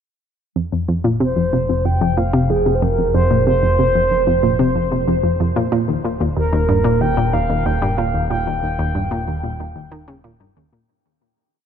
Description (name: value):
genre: ambient, sequencer-driven space music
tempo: 93 BPM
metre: 4/4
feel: straight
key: unclear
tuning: A4 = 437 Hz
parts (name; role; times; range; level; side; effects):
- analog pluck; riff; 0.6-10.8 s; Eb2 to Eb3; -18 LUFS; equal; chorus, ping-pong delay
- fat analog bass; bass; 0.6-10.8 s; Eb1 to F1; -24 LUFS; equal; none
- mellow horn-like synth lead; melody; 1.2-10.2 s; Ab4 to G5; -20 LUFS; right 1 dB; chorus, ping-pong delay
room: moderate huge ambient reverb, RT60 8.4 s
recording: none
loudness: -15 LUFS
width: side -8 dB against mid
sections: 0.6-10.9 A section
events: fade-out 7.4-10.9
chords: 0.6 F5; 5.7 Eb